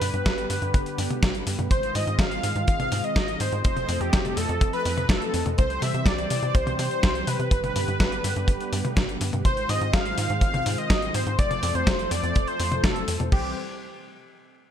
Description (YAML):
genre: italo disco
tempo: 124 BPM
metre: 4/4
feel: straight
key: unclear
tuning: A4 = 440 Hz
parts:
  - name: wide unison lead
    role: melody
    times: 0.0-13.5 s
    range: G4 to F5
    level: -28 LUFS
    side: equal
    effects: wide subtle chorus, ping-pong delay
  - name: warm analog pad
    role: sustained chords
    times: 0.0-13.5 s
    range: D3 to Eb5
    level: -32 LUFS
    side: right 1 dB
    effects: chorus
  - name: tight sequencer bass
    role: bass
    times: 0.0-13.5 s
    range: F1 to C3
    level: -29 LUFS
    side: equal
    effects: none
  - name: dusty soul sampler-style drum kit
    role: drums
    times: 0.0-13.4 s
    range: crash cymbal, hi-hat, snare drum, toms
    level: -28 LUFS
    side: left 1 dB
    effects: overdrive, gated reverb
  - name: kick drum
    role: drums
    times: 0.3-13.4 s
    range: none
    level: -22 LUFS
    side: equal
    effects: none
room: light reverb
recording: bright 1980s-style digital production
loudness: -22 LUFS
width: side -9 dB against mid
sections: 0.0-13.3 A section; 13.3-14.7 B section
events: none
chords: 0.0 G; 1.7 Ab6; 3.6 F; 5.6 C; 7.5 G; 9.5 Ab6; 11.4 F; 13.3 C